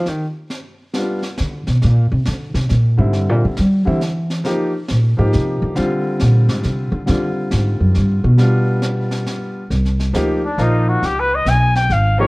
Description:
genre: jazz, small-group swing and bop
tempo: 137 BPM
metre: 3/4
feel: swing 66% on 8ths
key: C minor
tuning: A4 = 438 Hz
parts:
  - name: upright bass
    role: bass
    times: 0.0-12.3 s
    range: Ab1 to G3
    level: -16 LUFS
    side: equal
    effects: none
  - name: jazz brush drum kit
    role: drums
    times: 0.1-12.3 s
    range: brushed snare drum, hi-hat, snare drum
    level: -29 LUFS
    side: equal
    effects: none
  - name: warm concert grand piano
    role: accompaniment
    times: 0.9-12.3 s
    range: D3 to G4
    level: -21 LUFS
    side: equal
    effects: none
  - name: warm trumpet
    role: melody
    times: 10.5-12.3 s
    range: D4 to Ab5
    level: -17 LUFS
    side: left 1 dB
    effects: none
room: light reverb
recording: worn, warbling old tape, cassette tape, warbly pitch drift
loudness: -15 LUFS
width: side -24 dB against mid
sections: 0.0-9.7 A section; 9.7-12.3 A section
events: upright bass solo 0.0-9.7; trumpet solo 9.7-12.3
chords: 0.5 G7; 1.8 Csus2; 3.1 C; 4.4 F7(no3); 5.8 Bb; 7.1 Fm69; 8.4 G7; 9.7 Cm9; 11.0 Db7

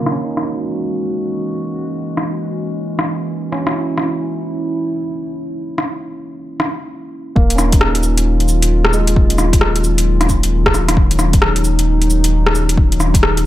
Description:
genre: future garage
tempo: 133 BPM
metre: 4/4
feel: swing 63% on 16ths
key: Eb phrygian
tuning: A4 = 440 Hz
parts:
  - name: tine electric piano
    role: accompaniment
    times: 0.0-13.5 s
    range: Gb3 to E4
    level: -24 LUFS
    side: right 2 dB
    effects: sidechain pumping, tape echo
  - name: warbly tape-like pad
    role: sustained chords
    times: 0.0-13.5 s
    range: Eb3 to F#4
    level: -22 LUFS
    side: equal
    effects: chorus, built-in reverb, sidechain pumping
  - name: deep house drum kit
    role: drums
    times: 0.1-13.4 s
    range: cabasa, hi-hat, rim click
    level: -18 LUFS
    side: equal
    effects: overdrive, low-pass filter on snare, low-pass filter on hats, low-pass filter on perc, low-pass filter on room
  - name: warm sub bass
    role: bass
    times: 7.4-13.5 s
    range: Eb1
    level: -16 LUFS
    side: equal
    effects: sidechain pumping
  - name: electronic kick drum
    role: drums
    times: 7.4-13.2 s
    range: none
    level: -14 LUFS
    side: equal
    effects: overdrive
room: light reverb, digital ambience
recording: low-pass filter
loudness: -14 LUFS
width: side -14 dB against mid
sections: 0.0-7.4 A section; 7.4-13.5 B section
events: filter sweep on drum 0.0-7.4; filter sweep 0.0-7.4; stop 6.9-7.4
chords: 0.1 E69; 7.4 Ebm9

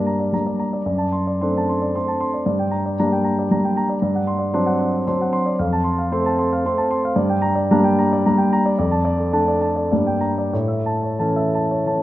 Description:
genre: classical, romantic triple-time dance for piano with dotted rhythms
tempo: 86-123 BPM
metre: 3/4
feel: rubato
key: unclear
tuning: A4 = 440 Hz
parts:
  - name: warm concert grand piano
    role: solo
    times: 0.0-12.0 s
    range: F2 to C6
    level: -17 LUFS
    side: equal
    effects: none
room: wet recital hall reverb, RT60 1.5 s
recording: heard from further back in the room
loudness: -17 LUFS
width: side -14 dB against mid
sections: 0.0-12.0 A section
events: none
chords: 0.0 Gm; 0.8 D7/F#; 2.5 Gm; 4.0 D7/G; 5.6 F; 7.2 Gm; 8.8 Dm/F; 9.9 Gm; 10.5 A

